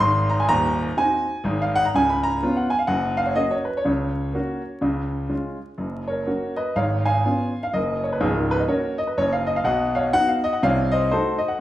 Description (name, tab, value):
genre	jazz, stride piano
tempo	124 BPM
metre	4/4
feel	swing 60% on 8ths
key	F# major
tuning	A4 = 440 Hz
part	warm grand piano	solo	0.0-11.6 s	C#1 to B#5	-20 LUFS	equal	none
room	wet large studio reverb, RT60 0.8 s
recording	band playing live in one room, vinyl crackle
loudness	-20 LUFS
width	side -14 dB against mid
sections	0.0-5.8 A section; 5.8-11.6 B section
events	none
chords	0.0 G#7; 1.9 C#7; 2.9 F#; 3.9 F#/C#; 4.8 C#; 5.8 F#; 6.7 C#7/G#; 7.7 F#; 9.6 B; 10.6 Cdim7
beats	| 0.02 0.50 0.98 1.46 | 1.94 2.42 2.90 3.38 | 3.86 4.34 4.82 5.30 | 5.78 6.26 6.75 7.23 | 7.71 8.20 8.68 9.16 | 9.65 10.13 10.62 11.10